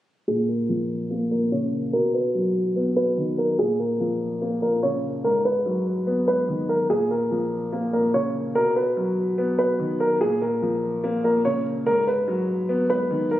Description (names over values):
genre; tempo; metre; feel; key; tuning
hip hop; 145 BPM; 4/4; half-time; Bb phrygian; A4 = 440 Hz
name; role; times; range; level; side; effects
dark concert grand piano; melody; 0.3-13.4 s; Ab4 to Db5; -23 LUFS; equal; low-pass filter, ping-pong delay
dark concert grand piano; accompaniment; 0.3-13.4 s; Ab2 to B3; -24 LUFS; left 1 dB; low-pass filter
room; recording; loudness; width
light reverb, small room ambience; recorded on a phone in the room, studio reverb; -21 LUFS; side -14 dB against mid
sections
0.3-13.4 A section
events
filter sweep 0.3-13.4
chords
0.3 Bbm; 1.9 B; 3.6 Bbm; 5.2 Abm7; 6.9 Bbm; 8.6 B; 10.2 Bbm; 11.9 Abm7